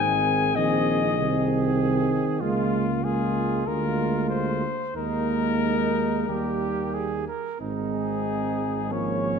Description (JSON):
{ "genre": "classical, brass quintet", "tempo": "89-98 BPM", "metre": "4/4", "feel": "rubato", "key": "Ab major", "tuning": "A4 = 440 Hz", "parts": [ { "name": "warm cornet", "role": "melody", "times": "0.0-9.4 s", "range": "F4 to Ab5", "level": "-28 LUFS", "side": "left 8 dB", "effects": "none" }, { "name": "warm trumpet", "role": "second line", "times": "0.0-9.4 s", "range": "Db4 to Bb4", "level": "-31 LUFS", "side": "right 8 dB", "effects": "none" }, { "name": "mellow trombone", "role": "accompaniment", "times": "0.0-9.4 s", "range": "Eb3 to Ab3", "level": "-29 LUFS", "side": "right 4 dB", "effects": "none" }, { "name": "warm French horn", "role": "accompaniment", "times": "0.0-9.4 s", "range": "Bb3 to C4", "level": "-30 LUFS", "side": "left 3 dB", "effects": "none" }, { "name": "mellow tuba", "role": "bass", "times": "0.0-9.4 s", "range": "Ab1 to Eb2", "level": "-29 LUFS", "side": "right 2 dB", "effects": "none" } ], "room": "wet scoring stage reverb, RT60 1.9 s", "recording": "none", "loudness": "-22 LUFS", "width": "side -6 dB against mid", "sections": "0.0-7.6 A section; 7.6-9.4 B section", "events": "none", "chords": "0.0 Ab; 1.2 Ab/C; 2.4 Bbm7/Db; 3.7 Bb7/D; 5.0 Ebsus4; 6.3 Eb; 7.6 Ab" }